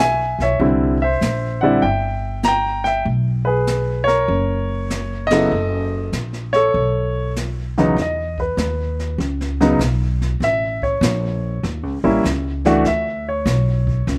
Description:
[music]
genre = jazz piano trio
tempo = 98 BPM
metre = 4/4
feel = swing 66% on 8ths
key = unclear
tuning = A4 = 440 Hz
[part]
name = warm baby grand piano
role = melody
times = 0.0-14.0 s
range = E2 to Bb5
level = -20 LUFS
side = equal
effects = none
[part]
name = upright bass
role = bass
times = 0.0-14.2 s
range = F#1 to E2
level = -24 LUFS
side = equal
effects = none
[part]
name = jazz brush drum kit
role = drums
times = 0.4-14.2 s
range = brushed snare drum, hi-hat, kick drum, ride cymbal, snare drum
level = -29 LUFS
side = equal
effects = none
[sound]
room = little or no reverb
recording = none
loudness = -19 LUFS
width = mono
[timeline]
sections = 0.0-8.0 A section; 8.0-14.2 B section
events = band accent 5.2-5.5; grand piano solo 8.0-14.2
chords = 0.0 E; 0.6 C9; 3.1 Bsus2; 5.5 F#m; 6.7 B7sus2; 8.0 E5; 10.4 A(b9); 12.9 Dmaj7sus2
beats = | 0.60 1.21 1.82 2.44 | 3.05 3.67 4.28 4.90 | 5.51 6.12 6.74 7.35 | 7.96 8.57 9.19 9.80 | 10.41 11.02 11.63 12.24 | 12.85 13.46 14.08

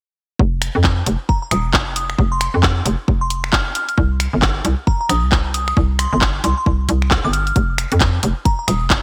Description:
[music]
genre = UK garage, two-step garage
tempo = 134 BPM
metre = 4/4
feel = swing 60% on 16ths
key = unclear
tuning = A4 = 440 Hz
[part]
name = hollow knocking FM bass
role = bass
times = 0.4-9.0 s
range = Eb1 to F2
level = -21 LUFS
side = equal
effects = none
[part]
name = electronic kick drum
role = drums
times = 0.4-9.0 s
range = none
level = -20 LUFS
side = equal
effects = none
[part]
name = garage drum kit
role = drums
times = 0.6-9.0 s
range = finger snaps, handclaps, hi-hat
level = -22 LUFS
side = equal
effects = gated reverb
[part]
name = glassy synth bell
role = melody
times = 1.3-8.8 s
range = Bb5 to F6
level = -26 LUFS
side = equal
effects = chorus, delay
[sound]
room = light reverb, digital ambience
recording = bright 1980s-style digital production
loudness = -18 LUFS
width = mono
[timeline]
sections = 0.4-9.0 A section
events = none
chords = 0.4 N.C.; 4.0 C5; 7.6 N.C.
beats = | 0.40 0.84 1.29 1.74 | 2.19 2.63 3.08 3.53 | 3.98 4.42 4.87 5.32 | 5.77 6.22 6.66 7.11 | 7.56 8.01 8.45 8.90

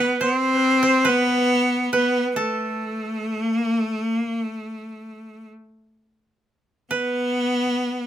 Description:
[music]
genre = japanese traditional, Japanese chamber music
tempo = 63-71 BPM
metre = 4/4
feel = rubato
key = unclear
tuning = A4 = 440 Hz
[part]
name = clear cello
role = melody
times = 0.0-8.1 s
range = A3 to C4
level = -21 LUFS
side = left 1 dB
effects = none
[part]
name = koto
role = second line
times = 0.0-8.1 s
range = A4 to C5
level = -24 LUFS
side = right 3 dB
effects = none
[sound]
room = light reverb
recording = close, detailed microphones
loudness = -19 LUFS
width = side -10 dB against mid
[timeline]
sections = 0.0-6.5 A section; 6.5-8.1 B section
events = none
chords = none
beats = 0.23 1.08 1.94 | 2.81 3.68 4.57 5.51 | 6.46 7.39

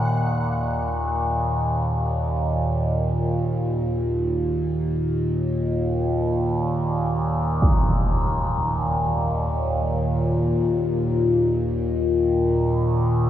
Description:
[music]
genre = dark ambient drone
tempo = free time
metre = none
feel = none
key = unclear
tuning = A4 = 440 Hz
[part]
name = overtone-sweeping drone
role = drone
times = 0.0-13.3 s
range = Eb2 to Bb2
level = -20 LUFS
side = equal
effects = chorus, built-in reverb
[part]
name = impact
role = percussion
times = 7.6-7.9 s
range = none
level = -24 LUFS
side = right 1 dB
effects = low-pass filter on sfx
[sound]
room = wet cathedral reverb, RT60 5.9 s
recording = in a vast, echoing space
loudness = -20 LUFS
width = side -11 dB against mid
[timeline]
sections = 0.1-13.3 A section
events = none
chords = 0.1 Eb5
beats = free time

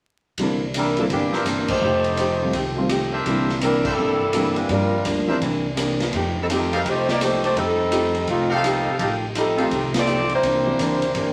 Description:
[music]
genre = jazz, big band swing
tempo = 167 BPM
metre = 4/4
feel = swing 64% on 8ths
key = unclear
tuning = A4 = 440 Hz
[part]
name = archtop guitar, miked and amplified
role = accompaniment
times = 0.4-11.3 s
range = G2 to G4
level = -28 LUFS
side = equal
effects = none
[part]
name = warm grand piano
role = accompaniment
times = 0.4-10.8 s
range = D3 to G4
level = -29 LUFS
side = equal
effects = none
[part]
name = upright bass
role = bass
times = 0.4-11.3 s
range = F1 to C3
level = -32 LUFS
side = equal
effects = none
[part]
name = swinging big-band drum kit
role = drums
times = 0.4-11.3 s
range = crash cymbal, hi-hat, kick drum, ride cymbal, rim click, snare drum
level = -31 LUFS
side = equal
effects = none
[part]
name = warm saxophone section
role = melody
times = 0.8-11.3 s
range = Eb3 to D5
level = -24 LUFS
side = equal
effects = none
[part]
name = clear trumpet section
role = stabs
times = 1.3-9.7 s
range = D4 to F5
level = -29 LUFS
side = equal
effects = none
[sound]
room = wet large studio reverb, RT60 1.5 s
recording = vinyl crackle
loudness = -21 LUFS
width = mono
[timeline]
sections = 0.4-11.3 A section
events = band accent 1.6, 3.8, 9.9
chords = 0.4 C9; 1.8 F9; 3.3 C9; 4.7 Gm7; 5.4 C9; 6.1 F9; 10.4 C9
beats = | 0.37 0.73 1.09 1.45 | 1.81 2.17 2.53 2.89 | 3.25 3.61 3.97 4.33 | 4.69 5.05 5.41 5.77 | 6.12 6.48 6.84 7.20 | 7.56 7.92 8.28 8.63 | 8.99 9.35 9.71 10.07 | 10.43 10.78 11.14

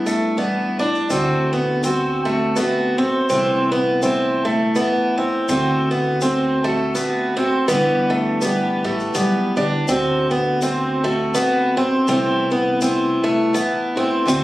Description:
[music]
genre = acoustic folk duo or small band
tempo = 82 BPM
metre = 3/4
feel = swing 57% on 8ths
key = unclear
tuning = A4 = 443 Hz
[part]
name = picked steel-string acoustic guitar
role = accompaniment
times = 0.0-14.4 s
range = G2 to G4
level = -22 LUFS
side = left 1 dB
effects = none
[part]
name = picked twelve-string acoustic guitar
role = arpeggios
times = 0.0-14.4 s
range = A3 to D4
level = -19 LUFS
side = right 1 dB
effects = none
[part]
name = tube shaker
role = percussion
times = 0.1-14.4 s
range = none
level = -33 LUFS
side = left 3 dB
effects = none
[part]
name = upright bass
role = bass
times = 1.1-14.4 s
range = G1 to D2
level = -27 LUFS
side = equal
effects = none
[sound]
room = moderate large studio reverb, RT60 1.0 s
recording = recorded on a phone in the room, studio reverb, compression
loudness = -17 LUFS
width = side -16 dB against mid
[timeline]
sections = 0.0-1.1 A section; 1.1-14.4 B section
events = none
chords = 0.0 Em7; 1.1 D7; 3.3 Amadd9/C; 5.5 D7; 7.7 G6; 9.9 D7; 12.1 Amadd9/C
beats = 0.38 | 1.11 1.84 2.57 | 3.31 4.04 4.77 | 5.50 6.23 6.97 | 7.70 8.43 9.16 | 9.89 10.63 11.36 | 12.09 12.82 13.56 | 14.29

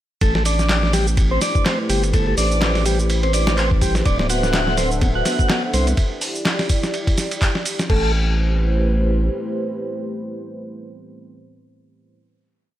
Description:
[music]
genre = breakbeat, breaks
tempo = 125 BPM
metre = 4/4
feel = swing 57% on 16ths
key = A dorian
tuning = A4 = 440 Hz
[part]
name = dark analog pad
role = sustained chords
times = 0.2-12.2 s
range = A3 to F#5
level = -26 LUFS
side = right 1 dB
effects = chorus, vintage 12-bit sampler grit, sidechain pumping
[part]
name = tonewheel organ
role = riff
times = 0.2-8.1 s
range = G3 to F#4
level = -23 LUFS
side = equal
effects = slow rotary speaker, overdrive, dub echo
[part]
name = saturated sub bass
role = bass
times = 0.2-9.3 s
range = D1 to C2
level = -20 LUFS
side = equal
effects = none
[part]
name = dusty soul sampler-style drum kit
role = drums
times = 0.2-8.0 s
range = crash cymbal, hi-hat, kick drum, ride cymbal, snare drum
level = -21 LUFS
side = equal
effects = none
[part]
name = punchy analog drum machine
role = drums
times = 0.2-7.9 s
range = handclaps, hi-hat, shaker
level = -26 LUFS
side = right 2 dB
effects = none
[part]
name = congas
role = percussion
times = 4.2-6.0 s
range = none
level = -29 LUFS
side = left 3 dB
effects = none
[sound]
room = little or no reverb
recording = none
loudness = -17 LUFS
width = side -13 dB against mid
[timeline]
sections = 0.2-7.9 drop; 7.9-11.7 final chord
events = drop 0.2-7.9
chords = 0.2 Am7; 4.1 D13; 6.0 Em7; 7.9 Am7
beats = | 0.22 0.70 1.18 1.66 | 2.14 2.62 3.10 3.58 | 4.06 4.54 5.02 5.50 | 5.98 6.46 6.94 7.42 | 7.90 8.38 8.86 9.34 | 9.82 10.30 10.78 11.26

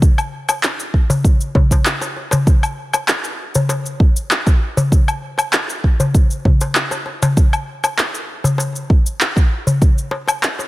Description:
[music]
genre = downtempo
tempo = 98 BPM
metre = 4/4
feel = straight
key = none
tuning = none
[part]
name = electronic kick drum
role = drums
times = 0.0-9.9 s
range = none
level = -12 LUFS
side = equal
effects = none
[part]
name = electronic shaker, woodblock and handclaps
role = drums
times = 0.0-10.7 s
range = none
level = -19 LUFS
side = equal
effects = none
[part]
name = darbuka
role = percussion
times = 0.5-10.7 s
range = none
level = -20 LUFS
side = left 1 dB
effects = none
[sound]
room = little or no reverb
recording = none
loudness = -14 LUFS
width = side -18 dB against mid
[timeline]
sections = 0.0-10.7 A section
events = none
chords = none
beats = | 0.02 0.63 1.25 1.86 | 2.47 3.08 3.69 4.31 | 4.92 5.53 6.14 6.75 | 7.37 7.98 8.59 9.20 | 9.82 10.43

